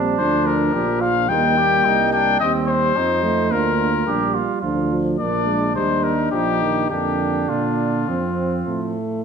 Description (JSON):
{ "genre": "classical, brass quintet", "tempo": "107 BPM", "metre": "4/4", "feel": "uneven beats", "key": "Bb major", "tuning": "A4 = 444 Hz", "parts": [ { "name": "mellow trumpet", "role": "second line", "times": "0.0-9.0 s", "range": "C4 to G4", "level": "-25 LUFS", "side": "right 8 dB", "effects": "none" }, { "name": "mellow euphonium", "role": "accompaniment", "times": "0.0-9.0 s", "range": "D3 to Bb3", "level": "-25 LUFS", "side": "right 4 dB", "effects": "none" }, { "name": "warm French horn", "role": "accompaniment", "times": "0.0-9.2 s", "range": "A3 to D4", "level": "-26 LUFS", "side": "left 4 dB", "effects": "none" }, { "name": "mellow tuba", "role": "bass", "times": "0.0-9.2 s", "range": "Bb1 to Bb2", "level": "-24 LUFS", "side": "right 4 dB", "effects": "none" }, { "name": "clear trumpet", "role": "melody", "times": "0.2-9.0 s", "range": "F4 to G5", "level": "-21 LUFS", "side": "left 7 dB", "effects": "none" } ], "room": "wet recital hall reverb, RT60 1.6 s", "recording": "minimal, uncompressed stereo recording", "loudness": "-17 LUFS", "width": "side -6 dB against mid", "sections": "0.0-9.2 A section", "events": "none", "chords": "0.2 Bb/D; 1.3 Cm7/Eb; 2.4 F7/Eb; 3.5 Bb/D; 4.6 Bb7/D; 5.8 Eb; 6.9 Bb/F; 8.1 F" }